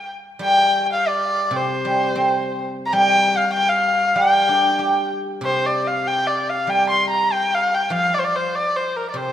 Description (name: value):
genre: chinese traditional, Chinese chamber ensemble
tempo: 96 BPM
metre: 2/4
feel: rubato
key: unclear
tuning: A4 = 443 Hz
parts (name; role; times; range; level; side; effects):
- warm erhu; melody; 0.0-9.3 s; Bb4 to C6; -18 LUFS; left 1 dB; none
- guzheng; accompaniment; 0.4-9.3 s; C3 to G4; -22 LUFS; right 2 dB; none
room: moderate scoring stage reverb, RT60 2.0 s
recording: none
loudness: -17 LUFS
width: side -10 dB against mid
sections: 0.0-5.4 A section; 5.4-9.3 B section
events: none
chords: none